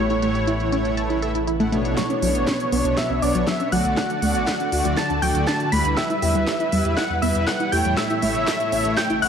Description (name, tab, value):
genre	progressive house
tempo	120 BPM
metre	4/4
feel	straight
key	A mixolydian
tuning	A4 = 439 Hz
part	wide unison lead	melody	0.0-9.3 s	C#5 to B5	-24 LUFS	equal	sidechain pumping, digital delay
part	shimmering ambient pad	sustained chords	0.0-9.3 s	A2 to C#5	-30 LUFS	right 2 dB	chorus, built-in reverb, sidechain pumping
part	wide unison pluck	arpeggios	0.0-9.3 s	F#3 to A5	-26 LUFS	right 1 dB	cassette tape, sidechain pumping, digital delay
part	soft supersaw	stabs	0.0-9.3 s	A2 to F#5	-25 LUFS	left 1 dB	sidechain pumping, digital delay
part	round analog bass	bass	0.0-9.3 s	G1 to E2	-27 LUFS	equal	sidechain pumping
part	drifting glass-harmonics texture	texture	0.0-2.0 s	F#5	-44 LUFS	right 2 dB	none
part	house drum kit	drums	0.1-9.3 s	hi-hat, snare drum	-29 LUFS	equal	high-pass filter on hats, low-pass filter on hats, high-pass filter on snare, low-pass filter on snare
part	soft round pluck	second line	2.0-9.3 s	C#6 to B6	-28 LUFS	left 1 dB	chorus, sidechain pumping
part	electronic kick drum	drums	2.0-9.1 s	none	-30 LUFS	equal	high-pass filter on kick
room	moderate scoring stage reverb, RT60 1.7 s, digital ambience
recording	dark, warm production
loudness	-19 LUFS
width	side -7 dB against mid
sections	0.0-2.0 A section; 2.0-9.3 B section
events	build-up 2.0-9.3; drum fill 2.0-9.3; filter sweep on ambient pad 2.0-9.3; filter sweep on analog synth lead 2.0-9.3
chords	0.0 A; 2.0 Bmadd9; 4.0 D; 6.0 Em; 8.0 A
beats	0.47 0.97 1.47 | 1.97 2.47 2.97 3.47 | 3.97 4.47 4.97 5.47 | 5.97 6.47 6.97 7.47 | 7.97 8.47 8.97